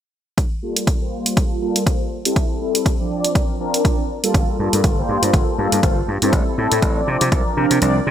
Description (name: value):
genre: filtered disco house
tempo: 121 BPM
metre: 4/4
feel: swing 56% on 16ths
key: G dorian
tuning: A4 = 440 Hz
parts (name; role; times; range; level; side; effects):
- electronic hi-hat; drums; 0.4-7.9 s; none; -23 LUFS; right 1 dB; overdrive, sidechain pumping on hats
- electronic kick drum; drums; 0.4-7.4 s; none; -19 LUFS; equal; overdrive
- mellow synth brass; accompaniment; 0.6-8.0 s; F3 to D5; -20 LUFS; equal; chorus, phaser, sidechain pumping, low-pass filter
- slap bass; bass; 4.3-8.1 s; G1 to C3; -21 LUFS; equal; tube saturation, sidechain pumping, low-pass filter
room: moderate lush hall reverb, RT60 2.1 s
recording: bright 1980s-style digital production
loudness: -16 LUFS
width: side -10 dB against mid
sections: 0.4-8.1 A section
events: filter sweep 0.4-8.1; kick drops out 7.8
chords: 0.4 Gm9; 2.4 Am7; 3.1 C9sus4; 4.3 Gm9; 6.3 Am7; 7.1 C9sus4